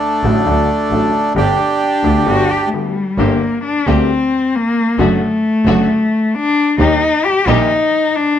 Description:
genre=tango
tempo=132 BPM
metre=4/4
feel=rubato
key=G major, G harmonic minor from 3.2 s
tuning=A4 = 440 Hz
part: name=bandoneon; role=melody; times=0.0-2.7 s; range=A3 to G4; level=-15 LUFS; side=right 2 dB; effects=plate reverb
part: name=clear upright piano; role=accompaniment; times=0.2-7.7 s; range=G1 to G4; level=-19 LUFS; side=left 4 dB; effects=none
part: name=clear double bass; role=bass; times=0.2-7.7 s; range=F#1 to Eb2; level=-18 LUFS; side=right 2 dB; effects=none
part: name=warm cello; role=second line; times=1.8-8.4 s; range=G3 to G4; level=-14 LUFS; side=left 3 dB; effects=none
part: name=warm studio string section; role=stabs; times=3.2-7.7 s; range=A3 to G4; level=-22 LUFS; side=right 2 dB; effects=none
room=moderate large studio reverb, RT60 1.0 s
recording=none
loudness=-12 LUFS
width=side -10 dB against mid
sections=0.0-3.2 A section; 3.2-8.4 B section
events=break 2.7-3.2; cello solo 3.2-8.4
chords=0.0 D; 1.4 Gadd9; 3.2 Gm; 5.0 D/F#; 6.8 Eb

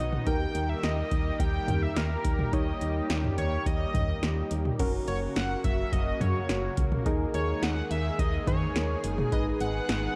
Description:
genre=synth-pop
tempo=106 BPM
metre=4/4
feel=straight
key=unclear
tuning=A4 = 440 Hz
part: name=octave-doubled lead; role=melody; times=0.0-10.2 s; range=A#4 to G5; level=-37 LUFS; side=equal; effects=chorus, tape echo
part: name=warm analog keys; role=accompaniment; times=0.0-10.2 s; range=C#4 to C#5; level=-38 LUFS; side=equal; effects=chorus
part: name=lush unison pad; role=sustained chords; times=0.0-10.2 s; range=C#3 to G#4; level=-38 LUFS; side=equal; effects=chorus
part: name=solid FM bass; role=bass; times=0.0-10.1 s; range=F#1 to D#3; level=-33 LUFS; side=equal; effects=none
part: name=electro analog drum machine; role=drums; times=0.1-10.0 s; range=crash cymbal, hi-hat, kick drum, snare drum, toms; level=-33 LUFS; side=equal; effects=none
room=moderate concert hall reverb, RT60 1.9 s, digital ambience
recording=dark, warm production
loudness=-28 LUFS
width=mono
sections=0.0-4.8 A section; 4.8-10.2 B section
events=none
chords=0.3 D#; 4.8 F#; 7.1 D#sus4; 9.3 G#m

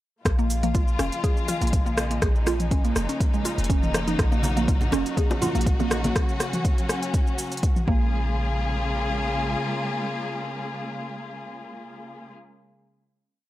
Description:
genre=afro house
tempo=122 BPM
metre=4/4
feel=swing 54% on 16ths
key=Bb minor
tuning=A4 = 436 Hz
part: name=warm symphonic string section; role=sustained chords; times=0.3-12.3 s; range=Db3 to Ab4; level=-29 LUFS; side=left 1 dB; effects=sidechain pumping
part: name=warm 808-style bass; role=bass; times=0.3-9.6 s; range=F1 to Bb1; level=-27 LUFS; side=equal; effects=sidechain pumping
part: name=afro-pop drum kit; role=drums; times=0.3-7.9 s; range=hi-hat, rim click, shaker, toms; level=-29 LUFS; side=equal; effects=none
part: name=electronic kick drum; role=drums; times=0.3-8.0 s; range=none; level=-23 LUFS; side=equal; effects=none
part: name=mallet-like synth pluck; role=arpeggios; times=0.4-8.3 s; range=F3 to Ab4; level=-29 LUFS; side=right 2 dB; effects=chorus, phaser, vintage 12-bit sampler grit, sidechain pumping, analog delay
part: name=congas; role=percussion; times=4.2-6.1 s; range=none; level=-32 LUFS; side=right 2 dB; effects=none
part: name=bongos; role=percussion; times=4.7-5.9 s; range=none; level=-30 LUFS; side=left 2 dB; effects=none
room=little or no reverb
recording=dry, gritty hardware recording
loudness=-22 LUFS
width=side -15 dB against mid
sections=0.3-8.1 drop; 8.1-12.1 final hit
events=drop 0.3-8.1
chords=0.3 Bbm7; 4.2 Ebm7; 7.9 Bbm7

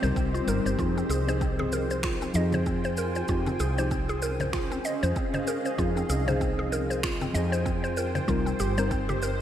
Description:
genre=organic downtempo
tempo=96 BPM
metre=4/4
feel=swing 58% on 16ths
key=F minor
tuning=A4 = 439 Hz
part: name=muted felt-like synth keys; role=accompaniment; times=0.0-8.9 s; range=F3 to Bb4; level=-32 LUFS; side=left 2 dB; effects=chorus, sidechain pumping, digital delay
part: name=granular cloud pad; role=sustained chords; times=0.0-9.4 s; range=C4 to Ab5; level=-33 LUFS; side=equal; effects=built-in reverb, sidechain pumping
part: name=mallet-like synth pluck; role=arpeggios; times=0.0-9.4 s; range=C4 to Eb5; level=-31 LUFS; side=equal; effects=chorus, digital delay
part: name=woody fretless electric bass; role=bass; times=0.0-9.4 s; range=G1 to F2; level=-30 LUFS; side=equal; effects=sidechain pumping
part: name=electronic congas, shaker and finger snaps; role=drums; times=0.0-9.4 s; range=none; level=-36 LUFS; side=left 2 dB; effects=overdrive, studio reverb, gated reverb
part: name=electronic kick drum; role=drums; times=0.2-9.1 s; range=none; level=-32 LUFS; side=equal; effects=overdrive, studio reverb
room=moderate lush hall reverb, RT60 2.5 s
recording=bright 1980s-style digital production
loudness=-25 LUFS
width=side -10 dB against mid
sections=0.0-9.4 A section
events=none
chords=0.0 Cm7; 0.8 Fm7; 3.3 Dbmaj9#11; 5.8 Fm7; 8.3 Cm7

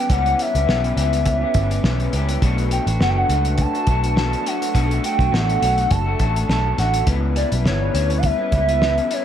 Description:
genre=indie pop, bedroom pop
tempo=103 BPM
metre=4/4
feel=swing 55% on 16ths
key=B minor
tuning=A4 = 440 Hz
part: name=warbly nostalgic lead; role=melody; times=0.0-9.2 s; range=C#5 to A5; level=-22 LUFS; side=right 1 dB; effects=wide subtle chorus, dub echo
part: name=electric guitar through a small old amp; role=accompaniment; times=0.0-9.2 s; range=B2 to G4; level=-26 LUFS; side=left 5 dB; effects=wide subtle chorus, warbly pitch drift
part: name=hollow soft pad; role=sustained chords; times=0.0-9.2 s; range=G3 to B4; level=-30 LUFS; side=equal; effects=chorus
part: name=vintage muted picked electric bass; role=bass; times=0.1-9.0 s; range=F#1 to D2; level=-20 LUFS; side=equal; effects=none
part: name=cloth-damped thuddy drum kit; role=drums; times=0.1-9.2 s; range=hi-hat, kick drum, snare drum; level=-24 LUFS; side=equal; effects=none
room=light reverb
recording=echo-heavy mix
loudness=-17 LUFS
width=side -10 dB against mid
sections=0.0-9.2 A section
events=none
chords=0.0 C#m7b5; 2.4 Bm7; 7.1 C#m7b5

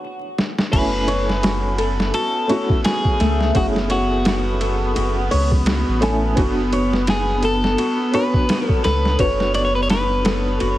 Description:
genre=trip hop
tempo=85 BPM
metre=4/4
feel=swing 57% on 16ths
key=F# minor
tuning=A4 = 443 Hz
part: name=felt-muted upright piano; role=accompaniment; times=0.0-10.8 s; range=A3 to G#5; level=-25 LUFS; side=equal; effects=tremolo, vintage 12-bit sampler grit, tape echo
part: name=boom bap sampler-style drum kit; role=drums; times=0.4-10.8 s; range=crash cymbal, hi-hat, kick drum, ride cymbal, snare drum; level=-22 LUFS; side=equal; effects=overdrive, studio reverb
part: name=electric guitar at the edge of break-up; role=melody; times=0.7-10.8 s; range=F#4 to D5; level=-23 LUFS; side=left 1 dB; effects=tape echo
part: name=rich studio string section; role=sustained chords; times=0.7-10.8 s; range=B3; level=-26 LUFS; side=right 1 dB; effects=none
part: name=flamenco guitar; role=arpeggios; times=0.7-10.8 s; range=A3 to C#5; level=-25 LUFS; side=left 1 dB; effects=vintage 12-bit sampler grit, tape echo
part: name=soft dub sub bass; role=bass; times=0.7-10.8 s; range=F#1 to C#2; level=-22 LUFS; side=equal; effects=none
room=small room ambience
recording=heavily compressed radio sound, multiband compression, vinyl crackle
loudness=-16 LUFS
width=side -14 dB against mid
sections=0.7-10.8 A section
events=break 0.0-0.7; drum fill 0.4-0.7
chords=0.0 Bm; 0.7 F#m7; 6.4 Bm/F#

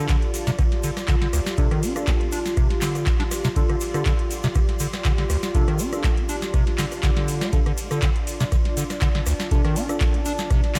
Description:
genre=acid house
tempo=121 BPM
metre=4/4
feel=swing 53% on 16ths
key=D minor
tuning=A4 = 437 Hz
part: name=dark analog pad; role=sustained chords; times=0.1-10.8 s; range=D4 to D5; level=-34 LUFS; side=equal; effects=chorus, sidechain pumping
part: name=acid bass, square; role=riff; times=0.0-10.8 s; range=D2 to D4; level=-29 LUFS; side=equal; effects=subtle chorus, sidechain pumping, analog delay
part: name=deep mellow chord stab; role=stabs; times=0.0-10.0 s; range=D4 to A4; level=-35 LUFS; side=equal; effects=chorus, cassette tape, analog delay
part: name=granular cloud pad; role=texture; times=0.0-10.8 s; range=F4 to C6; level=-38 LUFS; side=equal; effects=built-in reverb, sidechain pumping
part: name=booming analog drum machine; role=drums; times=0.1-10.8 s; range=handclaps, hi-hat, ride cymbal, rim click, snare drum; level=-33 LUFS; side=equal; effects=none
part: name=electronic kick drum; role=drums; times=0.1-10.6 s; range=none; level=-24 LUFS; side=equal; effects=none
part: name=egg shaker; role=percussion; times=0.1-10.8 s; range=none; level=-39 LUFS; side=equal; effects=none
part: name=swell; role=sound effects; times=6.7-7.5 s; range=none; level=-42 LUFS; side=equal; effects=none
room=light reverb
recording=none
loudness=-22 LUFS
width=mono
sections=0.0-10.8 A section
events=swell 6.7-7.5; drum fill 7.0-7.5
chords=0.0 Dm

